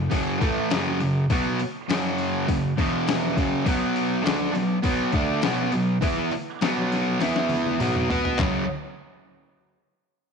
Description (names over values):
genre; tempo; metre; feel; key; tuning
garage rock duo or trio; 102 BPM; 4/4; straight; F# minor; A4 = 440 Hz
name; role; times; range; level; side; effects
fuzz guitar; riff; 0.0-8.6 s; E2 to B4; -22 LUFS; right 1 dB; distortion
trip hop sampler-style drum kit; drums; 0.1-8.5 s; handclaps, hi-hat, kick drum, snare drum, toms; -27 LUFS; left 3 dB; overdrive
room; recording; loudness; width
moderate echo chamber reverb, RT60 1.8 s, digital ambience; 1960s-style stereo, nothing above 10.6 kHz; -21 LUFS; side -5 dB against mid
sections
0.0-8.4 A section; 8.4-10.3 B section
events
drum fill 7.2-8.4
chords
0.0 F#m; 2.8 E5; 3.4 F#5; 3.7 B5; 7.2 E5; 7.8 B5; 8.4 F#5